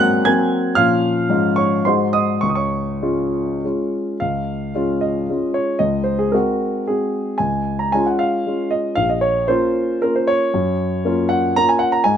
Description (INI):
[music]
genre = classical, romantic triple-time dance for piano with dotted rhythms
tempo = 94-126 BPM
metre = 3/4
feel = rubato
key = Db major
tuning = A4 = 440 Hz
[part]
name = dark concert grand piano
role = solo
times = 0.0-12.2 s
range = Bb1 to Ab6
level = -16 LUFS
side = equal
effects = none
[sound]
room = light reverb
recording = close, detailed microphones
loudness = -16 LUFS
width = side -8 dB against mid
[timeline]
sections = 0.0-4.2 A section; 4.2-12.2 B section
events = none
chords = 0.0 Ab9; 0.7 Bbm; 1.3 Db/Ab; 1.8 Ab7; 2.4 Db; 5.8 Ab7/Db; 7.4 Db; 9.0 Bbm; 10.5 Gbmaj7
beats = 0.24 | 0.75 1.28 1.85 | 2.42 3.02 3.63 | 4.20 4.74 5.29 | 5.81 6.34 6.89 | 7.40 7.93 8.47 | 8.97 9.49 10.04 | 10.54 11.05 11.56 | 12.04